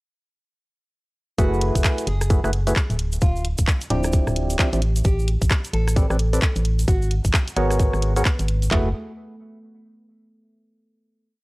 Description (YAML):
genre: UK garage, two-step garage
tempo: 131 BPM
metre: 4/4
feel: swing 61% on 16ths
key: unclear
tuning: A4 = 440 Hz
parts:
  - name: nylon-string guitar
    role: melody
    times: 1.4-8.9 s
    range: A3 to A4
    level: -34 LUFS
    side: equal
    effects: none
  - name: percussive organ stab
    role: stabs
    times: 1.4-8.9 s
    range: F3 to D5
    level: -24 LUFS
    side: equal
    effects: wide subtle chorus, cassette tape, analog delay
  - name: organ-like FM bass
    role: bass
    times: 1.4-8.9 s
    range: D1 to A1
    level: -22 LUFS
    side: equal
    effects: sidechain pumping
  - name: garage drum kit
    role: drums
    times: 1.4-8.8 s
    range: handclaps, kick drum, toms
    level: -19 LUFS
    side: equal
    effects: none
  - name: garage drum kit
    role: drums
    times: 1.4-8.7 s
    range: handclaps, hi-hat, rim click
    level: -26 LUFS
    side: equal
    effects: none
  - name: egg shaker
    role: percussion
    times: 1.4-8.7 s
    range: none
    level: -36 LUFS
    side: right 2 dB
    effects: none
room: little or no reverb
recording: dry, gritty hardware recording, cassette tape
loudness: -18 LUFS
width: side -22 dB against mid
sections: 1.4-8.7 drop; 8.7-10.5 final chord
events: drop 1.4-8.7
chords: 1.4 F#m11; 3.0 Dm11; 4.8 Am11; 6.9 G#m11; 8.7 F#m11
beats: | 1.38 1.84 2.30 2.76 | 3.22 3.67 4.13 4.59 | 5.05 5.51 5.96 6.42 | 6.88 7.34 7.80 8.25 | 8.71